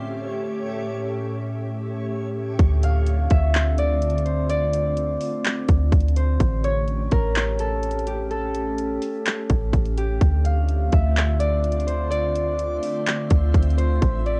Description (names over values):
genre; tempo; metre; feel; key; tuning
hip hop, atmospheric cloud-rap; 126 BPM; 4/4; half-time; D minor; A4 = 440 Hz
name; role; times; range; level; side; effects
glassy FM pad; sustained chords; 0.0-14.4 s; A2 to E5; -31 LUFS; equal; ensemble chorus, built-in reverb, sidechain pumping, low-pass filter, cassette tape
backwards swelling texture; texture; 0.0-2.6, 11.1-14.4 s; A3 to E5; -39 LUFS; equal; built-in reverb, cassette tape
soft 808-style bass; bass; 2.6-14.4 s; A1 to D2; -24 LUFS; equal; none
trap drum kit; drums; 2.6-14.4 s; handclaps, hi-hat, kick drum; -24 LUFS; equal; overdrive, cassette tape
Celtic harp; melody; 2.8-14.4 s; G4 to F5; -29 LUFS; equal; tape echo
room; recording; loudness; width
little or no reverb; home recording on cassette; -22 LUFS; mono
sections
0.0-2.6 A section; 2.6-14.4 B section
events
filter sweep on ambient pad 0.0-2.6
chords
0.0 A7; 2.6 Dm7; 6.4 A7; 10.2 Dm7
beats
0.21 | 0.69 1.16 1.64 2.12 | 2.59 3.07 3.54 4.02 | 4.50 4.97 5.45 5.92 | 6.40 6.88 7.35 7.83 | 8.30 8.78 9.26 9.73 | 10.21 10.69 11.16 11.64 | 12.12 12.59 13.07 13.54 | 14.02